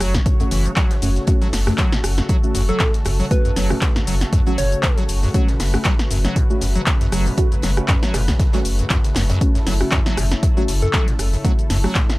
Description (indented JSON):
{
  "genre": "acid house",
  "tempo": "118 BPM",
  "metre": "4/4",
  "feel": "swing 55% on 16ths",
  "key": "F# minor",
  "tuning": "A4 = 440 Hz",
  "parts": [
    { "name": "warm analog pad", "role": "sustained chords", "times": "0.0-12.2 s", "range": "C#3 to C#5", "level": "-28 LUFS", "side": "left 1 dB", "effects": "lush chorus, sidechain pumping" },
    { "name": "acid bass, square", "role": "riff", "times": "0.0-12.0 s", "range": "F#1 to F#3", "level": "-25 LUFS", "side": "equal", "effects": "lush chorus, analog delay" },
    { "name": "saturated sub bass", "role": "bass", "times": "0.0-11.9 s", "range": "F#1", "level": "-20 LUFS", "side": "equal", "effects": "sidechain pumping" },
    { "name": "punchy analog drum machine", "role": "drums", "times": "0.0-12.2 s", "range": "handclaps, hi-hat, rim click, shaker, snare drum", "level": "-24 LUFS", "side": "equal", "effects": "none" },
    { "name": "tight funk drum kit", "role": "drums", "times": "0.0-12.2 s", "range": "hi-hat, snare drum", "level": "-36 LUFS", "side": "right 2 dB", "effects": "none" },
    { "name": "electronic kick drum", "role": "drums", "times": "0.1-12.1 s", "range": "none", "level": "-19 LUFS", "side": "equal", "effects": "none" },
    { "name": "deep mellow chord stab", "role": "stabs", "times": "0.4-11.9 s", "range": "A3 to F#4", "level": "-27 LUFS", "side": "right 1 dB", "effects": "chorus, vintage 12-bit sampler grit, analog delay" },
    { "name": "soft struck synth lead", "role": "melody", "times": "2.7-5.0, 10.8-11.0 s", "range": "A4 to C#5", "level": "-27 LUFS", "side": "equal", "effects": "chorus, analog delay" }
  ],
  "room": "little or no reverb",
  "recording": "none",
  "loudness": "-16 LUFS",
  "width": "side -20 dB against mid",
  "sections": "0.0-12.2 A section",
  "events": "none",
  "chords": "0.0 F#m"
}